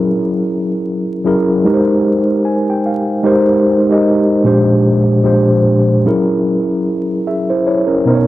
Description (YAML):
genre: hip hop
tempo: 75 BPM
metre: 4/4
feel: swing 58% on 16ths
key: unclear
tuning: A4 = 440 Hz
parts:
  - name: mellow tine electric piano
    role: solo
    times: 0.0-8.3 s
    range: Bb2 to Ab5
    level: -11 LUFS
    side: equal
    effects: medium stereo tremolo, low-pass filter, cassette tape, analog delay
room: moderate booth ambience, RT60 0.2 s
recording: home recording on cassette, vinyl crackle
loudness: -11 LUFS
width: side -15 dB against mid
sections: 0.0-3.2 A section; 3.2-8.3 B section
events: tine electric piano fill 2.0-3.2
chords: 0.0 Gb7; 1.6 Abmaj9; 4.5 Bb13; 6.0 Gb7